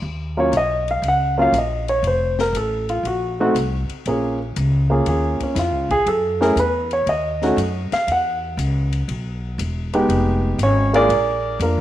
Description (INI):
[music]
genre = jazz piano trio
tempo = 119 BPM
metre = 4/4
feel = swing 68% on 8ths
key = Eb minor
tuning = A4 = 436 Hz
[part]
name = upright bass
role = bass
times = 0.0-11.8 s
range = E1 to Gb2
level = -22 LUFS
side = equal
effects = none
[part]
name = dark grand piano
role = melody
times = 0.4-11.8 s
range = Gb3 to Gb5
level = -18 LUFS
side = equal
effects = none
[part]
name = compact cocktail drum kit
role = drums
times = 0.5-11.8 s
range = hi-hat, kick drum, ride cymbal, snare drum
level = -34 LUFS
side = left 7 dB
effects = none
[sound]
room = moderate echo chamber reverb, RT60 1.3 s, studio reverb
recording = 1960s-style stereo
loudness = -17 LUFS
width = side -13 dB against mid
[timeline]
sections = 0.0-11.8 A section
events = grand piano solo 0.0-11.8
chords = 0.0 Ebm7; 2.0 F(b9); 4.1 Bbm7; 6.1 Gbm7; 7.1 Ebm; 8.1 E5; 10.1 Fm7b5; 11.1 Bb7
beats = | 0.02 0.53 1.03 1.53 | 2.04 2.54 3.04 3.55 | 4.05 4.56 5.06 5.56 | 6.07 6.57 7.07 7.58 | 8.08 8.58 9.09 9.59 | 10.09 10.59 11.10 11.60